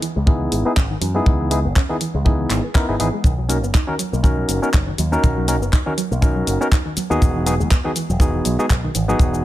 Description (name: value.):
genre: nu-disco, nu disco.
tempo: 121 BPM.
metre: 4/4.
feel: swing 56% on 16ths.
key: unclear.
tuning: A4 = 440 Hz.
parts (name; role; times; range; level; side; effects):
soft round pluck; arpeggios; 0.0-9.4 s; D#3 to D#4; -26 LUFS; right 2 dB; chorus, sidechain pumping, ping-pong delay.
pop drum kit; drums; 0.0-9.4 s; cabasa, handclaps, hi-hat; -27 LUFS; left 1 dB; small room reverb.
picked electric bass with an envelope filter; bass; 0.2-9.4 s; E1 to F#2; -22 LUFS; equal; none.
overdriven tine electric piano; accompaniment; 0.3-9.4 s; B3 to A#4; -22 LUFS; equal; sidechain pumping, low-pass filter, tape echo.
kick drum; drums; 0.3-9.3 s; none; -16 LUFS; equal; small room reverb.
room: studio reverb.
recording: none.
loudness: -16 LUFS.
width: side -14 dB against mid.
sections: 0.0-9.4 A section.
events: filter sweep on tine electric piano 0.0-9.4.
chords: 0.0 C#m9; 3.2 Bmaj7; 7.2 Emaj9.